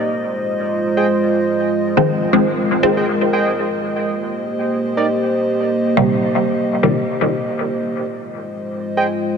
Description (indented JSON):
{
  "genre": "dub techno",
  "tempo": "120 BPM",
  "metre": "4/4",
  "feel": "swing 56% on 16ths",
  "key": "F minor",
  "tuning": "A4 = 438 Hz",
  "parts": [
    { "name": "dark analog pad", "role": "sustained chords", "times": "0.0-9.4 s", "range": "Ab3 to Eb5", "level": "-18 LUFS", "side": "right 1 dB", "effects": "chorus" },
    { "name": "warbly lo-fi synth keys", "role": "riff", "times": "1.0-5.1, 9.0-9.1 s", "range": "Eb4 to G5", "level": "-24 LUFS", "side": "right 3 dB", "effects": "chorus, dub echo" },
    { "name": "filtered dub chord stab", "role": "stabs", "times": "2.0-7.0 s", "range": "Bb2 to C4", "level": "-18 LUFS", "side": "equal", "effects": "phaser, dub echo" }
  ],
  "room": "wet huge ambient reverb, RT60 4.9 s",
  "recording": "none",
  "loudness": "-16 LUFS",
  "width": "side -6 dB against mid",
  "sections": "0.0-8.1 A section; 8.1-9.4 A section",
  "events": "break 7.1-8.1",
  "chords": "0.1 Fm7; 4.1 Cm7; 8.1 Fm7",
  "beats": "| 0.08 0.58 1.08 1.58 | 2.08 2.58 3.08 3.58 | 4.08 4.58 5.08 5.58 | 6.08 6.58 7.08 7.58 | 8.08 8.58 9.08"
}